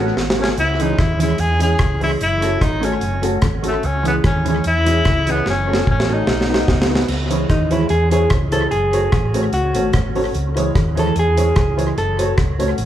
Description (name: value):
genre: ska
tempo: 148 BPM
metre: 4/4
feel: swing 53% on 8ths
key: C# minor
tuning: A4 = 440 Hz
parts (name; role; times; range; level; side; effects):
- breathy tenor saxophone; melody; 0.0-6.9 s; A3 to G#4; -21 LUFS; left 1 dB; none
- mellow electric guitar; accompaniment; 0.0-12.7 s; E3 to F#4; -24 LUFS; right 2 dB; phaser, tape echo
- dark upright piano; stabs; 0.0-12.7 s; C#4 to C#5; -24 LUFS; left 1 dB; none
- hollow-body short-scale fingered electric bass; bass; 0.0-12.9 s; F#1 to E2; -20 LUFS; equal; none
- deep reggae drum kit; drums; 0.2-12.9 s; crash cymbal, hi-hat, kick drum, rim click, snare drum; -20 LUFS; equal; tape echo
- clean electric guitar; melody; 7.5-12.4 s; D#4 to A4; -20 LUFS; equal; none
room: moderate large studio reverb, RT60 1.2 s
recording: band playing live in one room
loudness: -15 LUFS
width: side -11 dB against mid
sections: 0.0-7.1 A section; 7.1-12.9 B section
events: drum fill 0.0-0.6, 5.5-7.1; clean electric guitar solo 7.1-12.9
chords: 0.0 F#m; 0.6 C#m; 2.2 F#m; 3.8 C#m; 5.5 F#m; 6.3 B; 7.1 C#m; 8.7 F#m; 10.3 C#m; 12.0 F#m